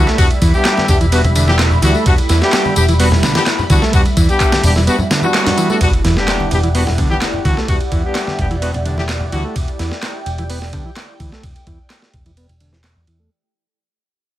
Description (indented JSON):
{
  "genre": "breakbeat, breaks",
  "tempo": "128 BPM",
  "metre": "4/4",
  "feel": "straight",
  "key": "E minor",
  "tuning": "A4 = 440 Hz",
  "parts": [
    { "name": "phased analog pad", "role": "sustained chords", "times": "0.0-13.3 s", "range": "G3 to B5", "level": "-23 LUFS", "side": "right 1 dB", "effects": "phaser, chorus, sidechain pumping" },
    { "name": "combo organ", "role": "riff", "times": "0.0-13.3 s", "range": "D3 to B3", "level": "-21 LUFS", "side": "right 1 dB", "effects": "low-pass filter, tape echo" },
    { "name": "clear horn section", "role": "stabs", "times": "0.0-9.4 s", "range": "G3 to G4", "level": "-19 LUFS", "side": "left 2 dB", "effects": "tape echo" },
    { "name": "hollow-body short-scale picked electric bass", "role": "bass", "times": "0.0-13.3 s", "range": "E1 to E2", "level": "-16 LUFS", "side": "equal", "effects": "none" },
    { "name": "breakbeat sampler-style drum kit", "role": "drums", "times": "0.1-13.2 s", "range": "hi-hat, kick drum, ride cymbal, snare drum", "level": "-18 LUFS", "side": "equal", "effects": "small room ambience" },
    { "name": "electronic tambourine and handclaps", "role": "drums", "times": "0.1-12.9 s", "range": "none", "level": "-24 LUFS", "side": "left 1 dB", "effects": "small room ambience" },
    { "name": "congas", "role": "percussion", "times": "0.8-9.3 s", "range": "none", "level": "-24 LUFS", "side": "left 1 dB", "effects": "none" },
    { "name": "impact", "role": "sound effects", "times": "5.8-7.7 s", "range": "none", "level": "-24 LUFS", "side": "equal", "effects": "none" }
  ],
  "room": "light reverb",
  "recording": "none",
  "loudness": "-12 LUFS",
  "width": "side -14 dB against mid",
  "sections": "0.0-5.8 A section; 5.8-13.3 B section",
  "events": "drop 0.0-5.8; band accent 5.3; fade-out 5.8-13.3; impact 5.8-7.7; filter sweep on transistor combo organ 5.8-13.3",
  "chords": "0.0 Em9"
}